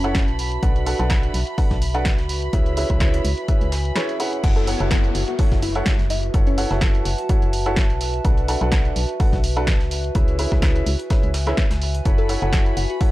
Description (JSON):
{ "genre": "piano house", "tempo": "126 BPM", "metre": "4/4", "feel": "swing 54% on 16ths", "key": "F# minor", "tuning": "A4 = 440 Hz", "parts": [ { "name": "soft struck synth lead", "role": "melody", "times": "0.0-0.3, 4.6-7.7, 12.2-13.0 s", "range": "C#4 to A4", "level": "-29 LUFS", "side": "left 2 dB", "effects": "chorus, analog delay" }, { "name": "rich chamber violin section", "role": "sustained chords", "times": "0.0-4.4, 12.1-13.1 s", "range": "B5", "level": "-35 LUFS", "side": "right 2 dB", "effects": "sidechain pumping" }, { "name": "bright upright piano", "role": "riff", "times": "0.0-13.1 s", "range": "C#4 to F#5", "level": "-26 LUFS", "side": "equal", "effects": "sidechain pumping, low-pass filter, analog delay" }, { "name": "organ-like FM bass", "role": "bass", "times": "0.0-12.9 s", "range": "F#1 to C#2", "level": "-23 LUFS", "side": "equal", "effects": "sidechain pumping" }, { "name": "punchy analog drum machine", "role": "drums", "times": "0.0-13.1 s", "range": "crash cymbal, hi-hat, snare drum", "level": "-28 LUFS", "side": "equal", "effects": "none" }, { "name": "warbly tape-like pad", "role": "texture", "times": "0.0-13.1 s", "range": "F#4 to A5", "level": "-30 LUFS", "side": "right 2 dB", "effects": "chorus, built-in reverb, sidechain pumping" }, { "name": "breakbeat sampler-style drum kit", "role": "drums", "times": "0.1-13.1 s", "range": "hi-hat, snare drum", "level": "-38 LUFS", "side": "equal", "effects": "high-pass filter on hats, high-pass filter on snare" }, { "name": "electronic kick drum", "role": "drums", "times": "0.2-13.1 s", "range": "none", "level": "-19 LUFS", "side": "equal", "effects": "none" }, { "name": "downlifter", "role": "sound effects", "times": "4.4-8.2 s", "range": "none", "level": "-34 LUFS", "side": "left 2 dB", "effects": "none" } ], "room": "little or no reverb", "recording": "dry, gritty hardware recording", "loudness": "-18 LUFS", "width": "side -17 dB against mid", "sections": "0.0-4.4 A section; 4.4-13.1 B section", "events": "break 4.0-4.4; drop 4.4-13.1", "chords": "0.4 Bm7; 2.3 C#m7; 4.4 F#m7; 8.0 Bm7; 9.9 C#m7; 12.1 F#m7" }